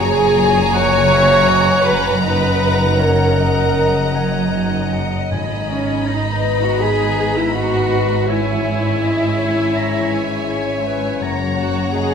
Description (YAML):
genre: cinematic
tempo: 81 BPM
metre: 4/4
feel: rubato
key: G# minor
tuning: A4 = 441 Hz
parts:
  - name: warm symphonic violin section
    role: melody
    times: 0.0-12.1 s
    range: G#5 to B5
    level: -26 LUFS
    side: left 3 dB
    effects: none
  - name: clear clarinet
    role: second line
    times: 0.0-12.1 s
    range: B4 to G#5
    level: -30 LUFS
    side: left 2 dB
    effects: none
  - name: clear oboe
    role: second line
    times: 0.0-12.1 s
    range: F#5 to B5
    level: -27 LUFS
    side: equal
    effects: none
  - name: small flute group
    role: second line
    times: 0.0-12.1 s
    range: C#5 to C#6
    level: -25 LUFS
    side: equal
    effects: none
  - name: warm symphonic violin section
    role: second line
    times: 0.0-12.1 s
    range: C#5 to A#5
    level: -25 LUFS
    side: left 2 dB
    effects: none
  - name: rich symphonic viola section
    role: accompaniment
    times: 0.0-12.1 s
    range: C#4 to C#5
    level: -18 LUFS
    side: right 1 dB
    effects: none
  - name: mellow French horn section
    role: sustained chords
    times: 0.0-12.1 s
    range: A#2 to G#4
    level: -26 LUFS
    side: left 4 dB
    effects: none
  - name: concert harp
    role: arpeggios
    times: 0.0-12.1 s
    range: F#2 to C#5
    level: -25 LUFS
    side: left 9 dB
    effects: none
  - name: warm symphonic cello section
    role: bass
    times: 0.0-12.1 s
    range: F#2 to G#2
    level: -23 LUFS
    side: right 3 dB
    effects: none
  - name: warm symphonic double bass section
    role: bass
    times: 0.0-12.1 s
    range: F#1 to G#1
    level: -23 LUFS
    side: right 2 dB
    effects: none
  - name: timpani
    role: percussion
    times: 5.3-6.4 s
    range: G#2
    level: -29 LUFS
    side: equal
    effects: none
room: wet scoring stage reverb, RT60 1.7 s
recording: minimal, uncompressed stereo recording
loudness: -14 LUFS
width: side -7 dB against mid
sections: 0.0-12.1 A section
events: none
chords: 0.0 F#add9; 2.2 D#m7/F#; 5.3 G#madd9; 8.3 C#m/G#; 11.2 F#add9